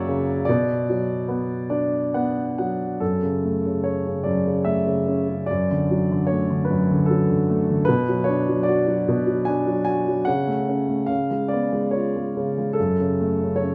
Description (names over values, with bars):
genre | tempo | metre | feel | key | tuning
classical, lyrical solo piano | 73 BPM | 3/4 | rubato | B harmonic minor, F# minor from 3.0 s | A4 = 440 Hz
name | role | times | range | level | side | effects
warm concert grand piano | solo | 0.0-13.7 s | F#2 to G#5 | -22 LUFS | equal | none
room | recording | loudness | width
moderate recital hall reverb, RT60 1.6 s | dark, warm production | -22 LUFS | mono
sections
0.0-3.0 A section; 3.0-13.7 B section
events
grand piano fill 1.3-3.0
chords
0.5 Bm; 3.0 F#m; 5.5 D/F#; 7.9 Bm; 10.3 F#m/C#; 11.1 C#7; 12.8 F#m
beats
| 0.48 1.29 2.14 | 3.02 3.86 4.68 | 5.49 6.30 7.09 | 7.88 8.67 9.47 | 10.28 11.10 11.94 | 12.77 13.60